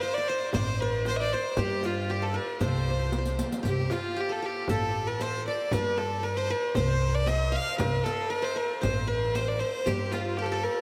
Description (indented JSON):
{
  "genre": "Arabic maqam ensemble",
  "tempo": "116 BPM",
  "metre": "4/4",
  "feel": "straight",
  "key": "C maqam rast",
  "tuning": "A4 = 440 Hz",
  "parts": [
    { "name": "rich fiddle", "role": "melody", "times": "0.0-10.8 s", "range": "F4 to F5", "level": "-32 LUFS", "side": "equal", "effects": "delay" },
    { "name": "qanun", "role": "second line", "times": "0.0-10.8 s", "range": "F4 to F5", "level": "-36 LUFS", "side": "equal", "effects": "none" },
    { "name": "darbuka", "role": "percussion", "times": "0.0-10.8 s", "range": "none", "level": "-38 LUFS", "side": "equal", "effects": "none" },
    { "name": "riq", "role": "percussion", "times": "0.0-10.7 s", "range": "none", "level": "-42 LUFS", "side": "equal", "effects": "none" },
    { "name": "upright bass", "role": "bass", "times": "0.5-10.7 s", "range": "A1 to G2", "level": "-33 LUFS", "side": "equal", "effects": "none" },
    { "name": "frame drum", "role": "percussion", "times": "0.5-10.3 s", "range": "none", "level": "-41 LUFS", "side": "equal", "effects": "none" }
  ],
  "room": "wet huge ambient reverb, RT60 8.3 s",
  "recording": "dreamy mix soaked in reverb",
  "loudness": "-28 LUFS",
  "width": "mono",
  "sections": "0.0-10.8 A section",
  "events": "drum fill 3.1-3.6",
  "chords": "none",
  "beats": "0.02 0.54 1.06 | 1.58 2.10 2.61 3.13 | 3.65 4.17 4.68 5.20 | 5.72 6.24 6.76 7.28 | 7.79 8.31 8.83 9.35 | 9.87 10.38"
}